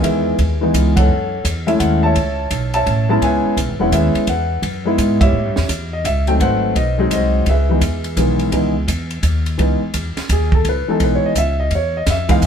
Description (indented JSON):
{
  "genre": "jazz piano trio",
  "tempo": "170 BPM",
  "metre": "3/4",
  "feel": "swing 64% on 8ths",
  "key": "C# minor",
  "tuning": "A4 = 439 Hz",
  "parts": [
    { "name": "warm grand piano", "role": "melody", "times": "0.0-12.5 s", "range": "D#3 to A5", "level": "-17 LUFS", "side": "left 1 dB", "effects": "plate reverb" },
    { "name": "upright bass", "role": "bass", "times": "0.0-12.5 s", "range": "E1 to A2", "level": "-19 LUFS", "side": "equal", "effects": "none" },
    { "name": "compact cocktail drum kit", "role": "drums", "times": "0.0-12.5 s", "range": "hi-hat, kick drum, ride cymbal, snare drum", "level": "-22 LUFS", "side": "right 2 dB", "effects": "none" }
  ],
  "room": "moderate studio reverb, RT60 0.5 s",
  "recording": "heard from further back in the room",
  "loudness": "-14 LUFS",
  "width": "side -7 dB against mid",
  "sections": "0.0-9.6 A section; 9.6-12.5 B section",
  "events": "band accent 0.9, 5.2; grand piano solo 9.6-12.5",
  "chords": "0.0 C#m7; 1.1 F#m7; 3.2 C#m7; 5.3 A7 (rootless); 6.4 G#7#9; 7.5 C#m7"
}